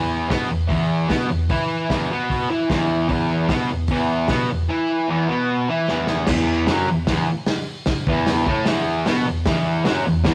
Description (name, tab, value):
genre	garage rock duo or trio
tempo	150 BPM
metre	4/4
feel	straight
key	unclear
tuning	A4 = 439 Hz
part	fuzz guitar	riff	0.0-10.3 s	E2 to E4	-22 LUFS	equal	distortion
part	vintage drum kit	drums	0.3-10.3 s	crash cymbal, hi-hat, kick drum, snare drum	-26 LUFS	equal	none
room	moderate stone room reverb, RT60 1.0 s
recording	rough rehearsal-room recording, tube saturation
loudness	-21 LUFS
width	mono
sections	0.0-6.3 A section; 6.3-10.3 B section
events	drum fill 5.9-6.3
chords	0.0 E5; 6.3 N.C.